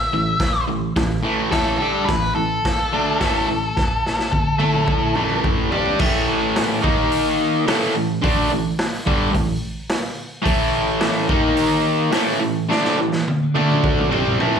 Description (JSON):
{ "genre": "garage rock duo or trio", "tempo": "107 BPM", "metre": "4/4", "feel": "straight", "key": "unclear", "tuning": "A4 = 439 Hz", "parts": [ { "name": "octave-fuzz lead guitar", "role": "melody", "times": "0.0-5.4 s", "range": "A4 to E5", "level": "-22 LUFS", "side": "left 2 dB", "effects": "distortion, slapback echo, tape echo" }, { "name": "overdriven semi-hollow guitar", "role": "riff", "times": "0.1-14.6 s", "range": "G2 to A4", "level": "-19 LUFS", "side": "equal", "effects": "slapback echo" }, { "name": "raw garage drum kit", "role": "drums", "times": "0.4-14.6 s", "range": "crash cymbal, hi-hat, kick drum, snare drum, toms", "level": "-22 LUFS", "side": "equal", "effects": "none" } ], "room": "light reverb", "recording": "live gig heard through the venue's PA, club reverb", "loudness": "-17 LUFS", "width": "side -7 dB against mid", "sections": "0.0-6.0 A section; 6.0-14.6 B section", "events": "drum fill 3.8-6.0, 12.7-14.6", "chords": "0.0 A5; 6.8 D#5; 7.7 A5; 11.3 D#5; 12.1 A5; 13.5 D5", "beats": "0.40 0.96 | 1.52 2.09 2.65 3.21 | 3.77 4.33 4.89 5.45 | 6.01 6.56 7.12 7.68 | 8.24 8.80 9.35 9.91 | 10.47 11.03 11.59 12.15 | 12.71 13.27 13.83 14.39" }